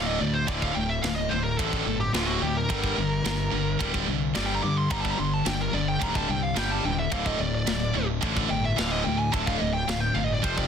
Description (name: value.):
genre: heavy metal.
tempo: 108 BPM.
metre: 4/4.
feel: straight.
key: D phrygian.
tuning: A4 = 441 Hz.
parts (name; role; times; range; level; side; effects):
high-gain lead guitar; melody; 0.0-10.7 s; F4 to D6; -30 LUFS; right 1 dB; distortion.
heavy high-gain guitar; riff; 0.0-10.7 s; D2 to G3; -30 LUFS; right 12 dB; distortion.
high-gain distorted guitar; riff; 0.0-10.7 s; D2 to G3; -30 LUFS; left 11 dB; distortion.
fuzz fingered electric bass; bass; 0.0-10.7 s; D1 to G2; -31 LUFS; equal; overdrive.
tight metal drum kit; drums; 0.5-10.7 s; kick drum, ride cymbal, snare drum; -32 LUFS; equal; soft clipping on kick.
room: light reverb.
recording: dense, heavily limited modern master.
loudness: -23 LUFS.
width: side -7 dB against mid.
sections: 0.0-10.7 A section.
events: lead electric guitar solo 0.0-10.7.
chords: 0.0 D5; 2.7 Gm; 7.1 D5.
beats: | 0.48 1.03 1.59 2.14 | 2.69 3.25 3.80 4.35 | 4.90 5.46 6.01 6.56 | 7.12 7.67 8.22 8.78 | 9.33 9.88 10.44.